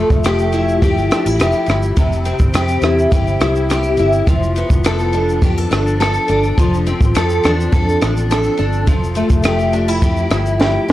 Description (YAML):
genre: indie pop, bedroom pop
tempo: 104 BPM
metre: 4/4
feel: straight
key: F major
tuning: A4 = 440 Hz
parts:
  - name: picked steel-string acoustic guitar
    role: accompaniment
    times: 0.0-10.9 s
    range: C3 to A4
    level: -16 LUFS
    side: left 1 dB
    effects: ensemble chorus, warbly pitch drift
  - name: vintage muted fingered electric bass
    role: bass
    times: 0.1-10.9 s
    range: F1 to F2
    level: -19 LUFS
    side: equal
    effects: none
  - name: compact cocktail drum kit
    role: drums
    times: 0.1-10.9 s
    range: kick drum, ride cymbal, rim click, shaker, snare drum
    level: -17 LUFS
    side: equal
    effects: none
room: small room ambience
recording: dry, gritty hardware recording, cassette tape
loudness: -13 LUFS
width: side -14 dB against mid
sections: 0.0-10.9 A section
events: drum fill 10.6-10.9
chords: 0.0 Fmaj9; 2.0 C/F; 4.3 G9/F; 6.6 F6